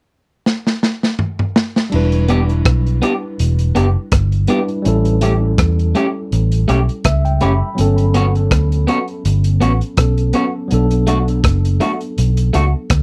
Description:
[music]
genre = lovers rock reggae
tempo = 82 BPM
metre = 4/4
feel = swing 55% on 16ths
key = E dorian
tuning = A4 = 439 Hz
[part]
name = crunchy breakbeat drum kit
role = drums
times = 0.5-13.0 s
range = crash cymbal, hi-hat, kick drum, rim click, snare drum, toms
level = -20 LUFS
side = equal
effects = none
[part]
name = tine electric piano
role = accompaniment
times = 1.9-13.0 s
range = F#3 to B5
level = -24 LUFS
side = equal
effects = overdrive, tape echo
[part]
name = vintage muted fingered electric bass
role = bass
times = 1.9-13.0 s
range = E1 to E2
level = -17 LUFS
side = equal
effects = none
[part]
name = electric guitar at the edge of break-up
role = stabs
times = 2.3-12.6 s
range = A3 to G4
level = -19 LUFS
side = equal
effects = none
[sound]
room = little or no reverb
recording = dry, close 1970s-style studio recording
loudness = -16 LUFS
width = mono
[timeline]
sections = 0.0-1.9 A section; 1.9-13.0 B section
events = drum fill 0.5-1.9; tine electric piano fill 6.7-7.8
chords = 0.0 N.C.; 1.9 Em7; 4.8 A7; 7.8 Gmaj9#11; 10.7 Bm7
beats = 0.46 1.19 | 1.92 2.65 3.39 4.12 | 4.85 5.58 6.31 7.04 | 7.78 8.51 9.24 9.97 | 10.70 11.44 12.17 12.90

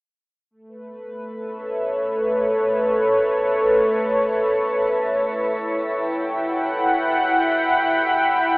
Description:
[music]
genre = ambient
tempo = 51 BPM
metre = 4/4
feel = straight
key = A mixolydian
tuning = A4 = 441 Hz
[part]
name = warm analog pad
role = sustained chords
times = 0.5-8.6 s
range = A3 to B5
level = -18 LUFS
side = equal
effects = chorus
[sound]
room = wet shimmer reverb, RT60 8.3 s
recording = telephone sound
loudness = -18 LUFS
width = side -27 dB against mid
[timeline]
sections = 0.5-8.6 A section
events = none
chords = 0.5 Aadd9; 5.3 Emadd9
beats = | 0.52 1.72 2.92 4.12 | 5.30 6.48 7.67

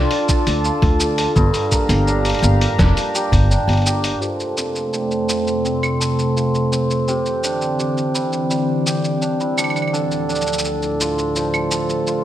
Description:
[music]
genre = folktronica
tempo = 84 BPM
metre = 4/4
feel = straight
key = F major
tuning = A4 = 439 Hz
[part]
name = warbly tape-like pad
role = sustained chords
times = 0.0-12.2 s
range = D2 to Bb5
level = -23 LUFS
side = equal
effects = chorus, built-in reverb
[part]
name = hammered dulcimer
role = arpeggios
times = 0.0-12.2 s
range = G2 to A4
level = -21 LUFS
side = right 1 dB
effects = low-pass filter, tape echo
[part]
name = upright bass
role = bass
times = 0.0-4.1 s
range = F1 to D2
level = -17 LUFS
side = equal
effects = none
[part]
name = lo-fi sampler-style drum kit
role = drums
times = 0.1-12.2 s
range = cabasa, claves, hi-hat, snare drum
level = -24 LUFS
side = equal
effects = none
[part]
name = electronic kick drum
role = drums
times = 0.3-3.5 s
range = none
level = -18 LUFS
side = equal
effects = none
[sound]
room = light reverb, digital ambience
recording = none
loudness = -16 LUFS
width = side -12 dB against mid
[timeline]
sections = 0.0-4.2 A section; 4.2-12.2 B section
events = kick drops out 3.5-4.2; filter sweep on hammered dulcimer 4.2-12.2; filter sweep on ambient pad 4.2-12.2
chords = 0.0 Dm; 1.4 Gm7; 4.2 F; 7.1 Cadd9; 9.9 Dm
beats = 0.65 | 1.36 2.08 2.79 3.50 | 4.22 4.93 5.65 6.36 | 7.08 7.79 8.51 9.22 | 9.93 10.65 11.36 12.08

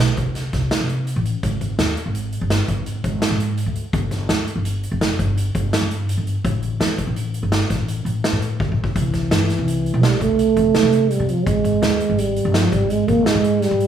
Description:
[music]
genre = progressive instrumental, band music in an uneven meter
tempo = 167 BPM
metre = 7/4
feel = straight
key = unclear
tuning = A4 = 441 Hz
[part]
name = upright bass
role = bass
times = 0.0-13.9 s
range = F1 to C3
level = -21 LUFS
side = equal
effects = none
[part]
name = street-band drum kit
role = drums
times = 0.2-13.9 s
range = hi-hat, kick drum, snare drum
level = -22 LUFS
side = equal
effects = none
[part]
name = trombone with bucket mute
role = second line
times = 8.9-13.9 s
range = E3 to Bb3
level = -18 LUFS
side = right 3 dB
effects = none
[sound]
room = light reverb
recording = studio reverb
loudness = -17 LUFS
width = side -9 dB against mid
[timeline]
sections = 0.0-13.9 A section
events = drum fill 8.6-9.0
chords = 0.0 C5; 1.4 Ab5; 3.9 G5; 6.4 A5; 9.0 C; 11.5 Ab5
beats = 0.35 0.71 1.07 | 1.43 1.78 2.14 2.50 2.86 3.22 3.58 | 3.93 4.29 4.65 5.01 5.37 5.73 6.08 | 6.44 6.80 7.16 7.52 7.88 8.24 8.60 | 8.95 9.31 9.67 10.03 10.39 10.75 11.11 | 11.47 11.82 12.18 12.54 12.90 13.26 13.62

